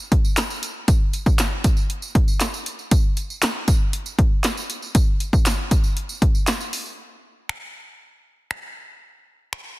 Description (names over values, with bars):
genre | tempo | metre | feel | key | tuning
pop | 118 BPM | 4/4 | straight | none | none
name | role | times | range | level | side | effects
punchy analog drum machine | drums | 0.1-9.6 s | finger snaps, handclaps, hi-hat, kick drum, snare drum | -19 LUFS | equal | soft clipping on snare
tambourine | percussion | 0.2-7.0 s | none | -32 LUFS | right 4 dB | none
room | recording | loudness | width
digital ambience | dense, heavily limited modern master | -18 LUFS | side -19 dB against mid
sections
0.0-7.0 A section; 7.0-9.8 B section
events
drop 0.0-7.0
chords
none